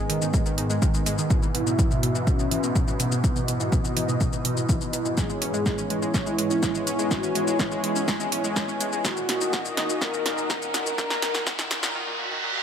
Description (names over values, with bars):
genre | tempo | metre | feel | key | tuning
melodic techno | 124 BPM | 4/4 | straight | unclear | A4 = 440 Hz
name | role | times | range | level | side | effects
dark analog pad | sustained chords | 0.0-11.9 s | E3 to E5 | -32 LUFS | left 1 dB | chorus, sidechain pumping
swarming drone | drone | 0.0-11.9 s | G#2 | -36 LUFS | equal | built-in reverb, sidechain pumping
deep dark ambient pad | texture | 0.0-12.0 s | D#4 to B5 | -32 LUFS | left 2 dB | chorus, built-in reverb, sidechain pumping
analog pluck | arpeggios | 0.1-12.6 s | A#2 to C#4 | -30 LUFS | right 2 dB | chorus, cassette tape, sidechain pumping, ping-pong delay
techno drum kit | drums | 0.1-11.9 s | hi-hat, shaker, snare drum | -29 LUFS | equal | none
electronic kick drum | drums | 0.3-11.6 s | none | -25 LUFS | equal | none
mellow synth brass | melody | 1.3-11.4 s | B3 to A#4 | -31 LUFS | equal | chorus, sidechain pumping, tape echo
riser and reverse cymbal | sound effects | 8.3-12.6 s | none | -34 LUFS | right 2 dB | none
room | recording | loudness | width
moderate recital hall reverb, RT60 1.6 s | high-pass filter | -22 LUFS | side -8 dB against mid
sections
0.0-12.6 A section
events
build-up 0.0-12.6; filter sweep on analog polysynth 0.0-12.6; filter sweep 0.0-12.6; drum fill 5.2-11.9; riser 8.3-12.6; reverse cymbal 11.9-12.6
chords
0.0 G#m; 1.3 Esus2; 5.2 C#m7; 9.0 D#m